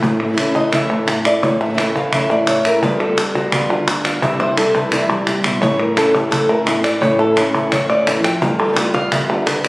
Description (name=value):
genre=flamenco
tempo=172 BPM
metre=4/4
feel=straight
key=unclear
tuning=A4 = 442 Hz
part: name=flamenco guitar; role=melody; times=0.0-9.7 s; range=A2 to G5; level=-17 LUFS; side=equal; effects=none
part: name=flamenco guitar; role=stabs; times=0.0-9.5 s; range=A2 to F4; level=-22 LUFS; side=right 1 dB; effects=none
part: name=cajon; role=percussion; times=0.0-9.6 s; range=none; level=-24 LUFS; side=equal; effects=none
part: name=palmas hand claps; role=percussion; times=0.0-9.7 s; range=none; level=-20 LUFS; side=equal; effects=none
room=wet large studio reverb, RT60 1.2 s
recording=recorded on a phone in the room, studio reverb, compression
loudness=-14 LUFS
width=side -22 dB against mid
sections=0.0-9.7 A section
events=nylon-string guitar solo 0.0-9.7; drum fill 5.1-5.6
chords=0.0 A; 2.8 G7; 4.2 C; 5.6 A; 8.4 G7